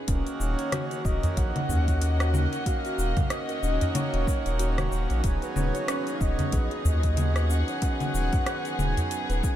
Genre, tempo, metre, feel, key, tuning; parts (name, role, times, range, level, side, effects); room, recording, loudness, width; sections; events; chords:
organic downtempo; 93 BPM; 4/4; swing 58% on 16ths; Eb minor; A4 = 441 Hz
rich chamber string section; sustained chords; 0.0-9.6 s; Eb3 to Gb5; -36 LUFS; left 1 dB; vintage 12-bit sampler grit, sidechain pumping
pedal harmonium; accompaniment; 0.1-9.6 s; Eb3 to Ab4; -34 LUFS; right 4 dB; sidechain pumping, tape echo
kalimba; arpeggios; 0.1-9.6 s; Db4 to Db5; -36 LUFS; left 1 dB; tape echo
round analog bass; bass; 0.1-9.4 s; Eb1 to Eb2; -26 LUFS; equal
deep house drum kit; drums; 0.1-9.6 s; congas, hi-hat, rim click, shaker; -33 LUFS; left 1 dB
electronic kick drum; drums; 0.1-9.6 s; -27 LUFS; equal
breathy flute-like synth lead; melody; 0.4-9.6 s; Db5 to Ab5; -33 LUFS; equal; lush chorus, diffuse ambient delay
udu; percussion; 1.2-9.1 s; -29 LUFS; right 1 dB
light reverb, studio ambience; -24 LUFS; side -12 dB against mid
0.1-9.6 A section
0.1 Ebm7; 5.2 Db7sus4/Eb